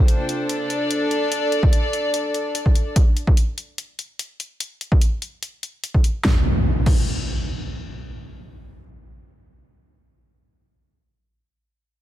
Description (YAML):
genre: heavy wobble dubstep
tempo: 146 BPM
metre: 4/4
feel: half-time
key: D minor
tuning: A4 = 440 Hz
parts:
  - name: rich chamber string section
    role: texture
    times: 0.0-3.0 s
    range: D4 to G5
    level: -22 LUFS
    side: left 1 dB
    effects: sidechain pumping
  - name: dubstep drum kit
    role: drums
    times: 0.1-7.0 s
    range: crash cymbal, hi-hat, snare drum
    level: -27 LUFS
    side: left 2 dB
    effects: studio reverb
  - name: electronic kick drum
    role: drums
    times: 1.6-7.0 s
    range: none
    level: -16 LUFS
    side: equal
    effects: studio reverb
  - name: impact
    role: sound effects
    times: 6.2-9.6 s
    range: none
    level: -24 LUFS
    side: equal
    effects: none
room: light reverb, digital ambience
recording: none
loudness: -18 LUFS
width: side -13 dB against mid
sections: 0.0-6.2 A section; 6.2-9.5 B section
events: none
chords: 0.0 Dm7; 3.0 N.C.